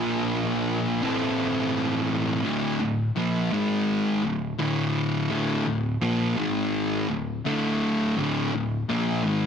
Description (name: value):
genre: rock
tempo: 84 BPM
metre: 4/4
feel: straight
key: D minor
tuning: A4 = 440 Hz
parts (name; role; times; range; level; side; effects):
- fuzz guitar; solo; 0.0-9.5 s; D2 to Bb4; -23 LUFS; equal; distortion
room: little or no reverb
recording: dense, heavily limited modern master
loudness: -23 LUFS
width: side -7 dB against mid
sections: 0.0-2.5 A section; 2.5-9.5 B section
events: none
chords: 0.0 Bb; 1.0 Am; 2.5 Dm; 3.5 G#5; 4.2 Dm; 6.4 G#5; 7.1 Dm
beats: 0.31 1.02 1.74 | 2.45 3.16 3.88 4.59 | 5.31 6.02 6.74 7.45 | 8.17 8.88